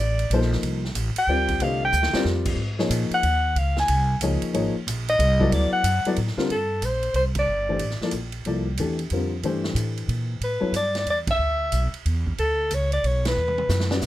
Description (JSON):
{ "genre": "modal jazz", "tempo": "184 BPM", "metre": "3/4", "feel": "swing 64% on 8ths", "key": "C dorian", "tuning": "A4 = 440 Hz", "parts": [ { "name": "mellow soprano saxophone", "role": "melody", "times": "0.0-8.0, 10.4-14.0 s", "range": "A4 to Ab5", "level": "-23 LUFS", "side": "left 1 dB", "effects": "none" }, { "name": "upright bass", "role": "bass", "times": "0.0-14.1 s", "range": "G1 to B2", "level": "-25 LUFS", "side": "equal", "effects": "none" }, { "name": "swinging big-band drum kit", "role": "drums", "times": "0.2-14.1 s", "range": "crash cymbal, hi-hat, kick drum, ride cymbal, snare drum, toms", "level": "-32 LUFS", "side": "right 2 dB", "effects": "none" }, { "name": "warm baby grand piano", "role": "accompaniment", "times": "0.3-10.7, 13.9-14.0 s", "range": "D3 to Eb5", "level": "-26 LUFS", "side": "left 3 dB", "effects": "none" } ], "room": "little or no reverb", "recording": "none", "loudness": "-21 LUFS", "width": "side -14 dB against mid", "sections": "0.0-6.5 A section; 6.5-14.1 B section", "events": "soprano saxophone solo 0.0-6.5; drum fill 1.9-2.3, 13.4-14.0; band accent 7.3, 11.2, 13.2", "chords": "0.0 C13sus4; 2.6 Absus4; 5.5 D69; 6.5 G13sus4; 10.4 A13sus4", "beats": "0.31 | 0.64 0.96 1.29 | 1.61 1.94 2.26 | 2.59 2.91 3.24 | 3.56 3.89 4.21 | 4.54 4.86 5.19 | 5.51 5.84 6.16 | 6.49 6.82 7.14 | 7.47 7.80 8.12 | 8.45 8.78 9.10 | 9.43 9.76 10.09 | 10.41 10.74 11.07 | 11.39 11.72 12.05 | 12.38 12.70 13.03 | 13.36 13.69 14.02" }